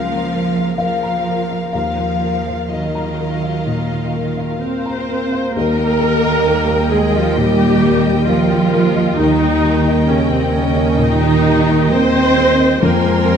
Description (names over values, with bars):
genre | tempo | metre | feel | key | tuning
cinematic, emotional film score for orchestra | 65 BPM | 4/4 | uneven beats, rubato | Eb minor | A4 = 440 Hz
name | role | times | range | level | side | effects
warm symphonic violin section | melody | 0.0-13.4 s | Eb5 to C6 | -27 LUFS | left 6 dB | none
rich symphonic violin section | second line | 0.0-13.4 s | Bb4 to Ab5 | -27 LUFS | left 2 dB | none
felt-muted upright piano | accompaniment | 0.0-13.4 s | Db2 to Bb5 | -20 LUFS | left 4 dB | none
rich symphonic viola section | accompaniment | 0.0-13.4 s | F3 to C5 | -19 LUFS | right 1 dB | none
rich symphonic cello section | bass | 0.0-13.4 s | C3 to C4 | -19 LUFS | right 4 dB | none
dark French horn section | sustained chords | 5.6-13.4 s | F3 to C5 | -22 LUFS | left 3 dB | none
rich symphonic double bass section | bass | 5.6-13.4 s | Eb2 to F2 | -19 LUFS | right 3 dB | none
room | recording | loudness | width
wet scoring stage reverb, RT60 1.7 s | dark, warm production | -13 LUFS | side -7 dB against mid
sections
0.0-5.6 A section; 5.6-13.4 A section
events
none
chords
0.0 Bbm/Db; 1.7 Ebmadd9; 5.6 Eb; 12.8 Fmadd9